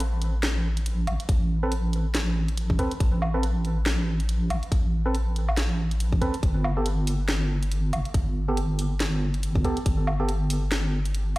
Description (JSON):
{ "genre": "deep dubstep", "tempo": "140 BPM", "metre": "4/4", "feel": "swing 58% on 16ths, half-time", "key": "A minor", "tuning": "A4 = 444 Hz", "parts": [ { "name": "deep soft wobble bass", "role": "bass", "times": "0.0-11.4 s", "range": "G1 to A1", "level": "-25 LUFS", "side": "equal", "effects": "chorus" }, { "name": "garage drum kit", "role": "drums", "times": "0.0-11.4 s", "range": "hi-hat, snare drum, woodblock", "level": "-31 LUFS", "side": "equal", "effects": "overdrive" }, { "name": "electronic kick drum", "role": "drums", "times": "1.3-10.0 s", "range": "none", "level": "-23 LUFS", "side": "equal", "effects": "overdrive" }, { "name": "percussive organ stab", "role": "stabs", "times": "1.6-10.3 s", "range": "B3 to B4", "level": "-32 LUFS", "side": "right 1 dB", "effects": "chorus, dub echo" } ], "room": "light reverb", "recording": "played on a big sound system in a bare room, stone room reverb", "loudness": "-23 LUFS", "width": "side -19 dB against mid", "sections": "0.0-11.4 A section", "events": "none", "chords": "0.0 Amadd9; 6.4 Gadd9" }